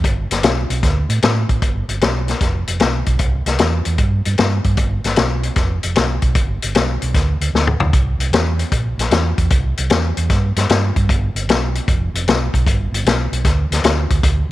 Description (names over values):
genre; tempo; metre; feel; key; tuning
electric blues shuffle; 152 BPM; 4/4; swing 68% on 8ths; G mixolydian; A4 = 440 Hz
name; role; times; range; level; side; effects
fingered electric bass; bass; 0.0-14.5 s; F1 to A2; -19 LUFS; right 1 dB; none
vintage drum kit; drums; 0.0-14.4 s; hi-hat, kick drum, snare drum, toms; -17 LUFS; left 2 dB; none
room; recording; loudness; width
light reverb; 1960s-style stereo; -15 LUFS; side -16 dB against mid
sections
0.0-1.6 A section; 1.6-14.5 A section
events
drum fill 7.5-7.9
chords
none